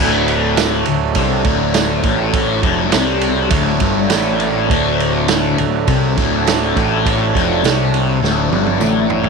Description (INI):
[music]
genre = psychedelic rock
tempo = 102 BPM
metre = 4/4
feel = straight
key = D major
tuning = A4 = 438 Hz
[part]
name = hand-pumped harmonium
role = sustained chords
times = 0.0-9.3 s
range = F#3 to A4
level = -20 LUFS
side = right 12 dB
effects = none
[part]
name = thick fuzz guitar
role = riff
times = 0.0-9.3 s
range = D2 to C3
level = -17 LUFS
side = left 12 dB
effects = distortion, phaser
[part]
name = fuzz picked electric bass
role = bass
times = 0.0-9.3 s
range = D1 to C2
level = -21 LUFS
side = right 2 dB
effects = overdrive
[part]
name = vintage drum kit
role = drums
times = 0.3-9.3 s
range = kick drum, ride cymbal, snare drum, toms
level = -19 LUFS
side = right 5 dB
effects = none
[part]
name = tambourine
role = percussion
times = 0.6-8.9 s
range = none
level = -33 LUFS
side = right 18 dB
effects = none
[sound]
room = light reverb, small room ambience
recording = 1960s-style stereo with parts hard left and right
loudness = -13 LUFS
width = side -4 dB against mid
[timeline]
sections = 0.0-9.3 A section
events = drum fill 8.2-9.3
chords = 0.0 D